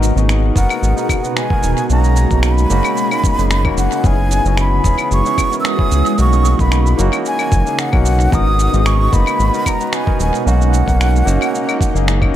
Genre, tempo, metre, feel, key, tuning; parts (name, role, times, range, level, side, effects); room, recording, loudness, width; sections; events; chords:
sunset chillout; 112 BPM; 4/4; swing 53% on 16ths; B major; A4 = 441 Hz
barky tine electric piano; accompaniment; 0.0-12.4 s; A#3 to B4; -21 LUFS; moving between left 8 dB and right 9 dB; medium stereo tremolo, auto-pan, tape echo
shimmering ambient pad; sustained chords; 0.0-12.4 s; B2 to G#4; -22 LUFS; equal; chorus, built-in reverb, phaser
round analog bass; bass; 0.0-12.4 s; D#1 to C#2; -14 LUFS; equal
electronic shaker, finger snaps and claves; drums; 0.0-12.3 s; -23 LUFS; left 1 dB; overdrive, tape echo
breathy mellow silver concert flute; melody; 0.6-12.0 s; F#5 to E6; -20 LUFS; right 1 dB; tape echo
electronic kick drum; drums; 0.6-12.3 s; -17 LUFS; equal; overdrive
light reverb, digital ambience; echo-heavy mix; -12 LUFS; side -12 dB against mid
0.0-12.4 A section
0.0 G#m9; 1.9 Bmaj9; 4.0 F#9sus4; 6.2 Bmaj9; 8.3 G#m9; 10.5 Bmaj9